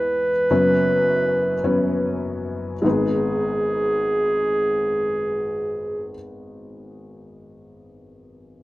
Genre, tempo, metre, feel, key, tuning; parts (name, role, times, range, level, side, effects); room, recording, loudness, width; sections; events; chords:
folk; 49-55 BPM; 4/4; straight; G# minor; A4 = 440 Hz
warm clarinet; melody; 0.0-6.1 s; G#4 to B4; -21 LUFS; right 1 dB
felt-muted upright piano; accompaniment; 0.0-8.6 s; F#1 to B4; -24 LUFS; left 2 dB
light reverb; close, detailed microphones; -19 LUFS; side -17 dB against mid
0.0-2.8 A section; 2.8-7.7 B section
slowing down 0.0-2.8
0.0 E; 0.5 F#sus4; 2.8 G#m